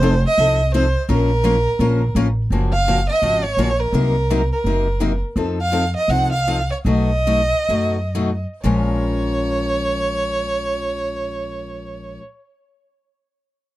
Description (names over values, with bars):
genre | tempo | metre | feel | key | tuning
acoustic string swing (jazz manouche) | 117-169 BPM | 4/4 | swing 62% on 8ths | Bb minor | A4 = 444 Hz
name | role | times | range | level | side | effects
warm violin | melody | 0.0-12.2 s | Bb4 to Gb5 | -21 LUFS | right 2 dB | plate reverb
picked old ladder-braced acoustic guitar | accompaniment | 0.0-12.2 s | Bb2 to Bb4 | -22 LUFS | left 3 dB | none
upright bass | bass | 0.0-12.2 s | F1 to F#2 | -21 LUFS | equal | none
room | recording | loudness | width
light reverb | dark, warm production | -16 LUFS | side -15 dB against mid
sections
0.0-2.5 A section; 2.5-8.6 B section; 8.6-12.7 C section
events
slowing down 5.4-8.6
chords
0.0 F7; 1.1 Bbm; 2.5 Gbmaj9; 3.9 Cm7b5; 5.4 F7; 6.8 B7; 8.6 Bbm7